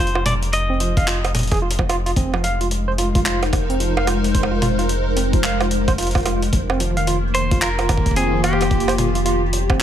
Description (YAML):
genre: IDM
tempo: 110 BPM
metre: 4/4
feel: swing 62% on 16ths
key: unclear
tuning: A4 = 440 Hz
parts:
  - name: clean electric guitar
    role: melody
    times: 0.0-1.3, 7.3-8.9 s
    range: G4 to Eb5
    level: -24 LUFS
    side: equal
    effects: digital delay
  - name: overdriven tine electric piano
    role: arpeggios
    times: 0.0-9.8 s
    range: F3 to F5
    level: -24 LUFS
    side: right 3 dB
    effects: fast tremolo, dub echo
  - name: rubbery square bass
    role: bass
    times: 0.0-9.8 s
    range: F1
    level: -23 LUFS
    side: equal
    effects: tube saturation
  - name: jungle sampler-style drum kit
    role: drums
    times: 0.1-9.8 s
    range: bongos, handclaps, hi-hat, toms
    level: -24 LUFS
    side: right 2 dB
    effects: overdrive
  - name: electronic kick drum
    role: drums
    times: 1.0-9.8 s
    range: none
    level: -20 LUFS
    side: equal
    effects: overdrive
  - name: hollow soft pad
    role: sustained chords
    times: 2.6-9.8 s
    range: Eb3 to C5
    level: -23 LUFS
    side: left 1 dB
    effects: ensemble chorus
room: little or no reverb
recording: none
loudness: -16 LUFS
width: side -10 dB against mid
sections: 0.0-9.8 A section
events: none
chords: 0.0 F7(no3); 2.2 Ab/F; 6.5 Eb/F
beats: 0.53 1.07 1.62 | 2.17 2.71 3.26 3.80 | 4.35 4.89 5.44 5.98 | 6.53 7.07 7.62 8.16 | 8.71 9.26 9.80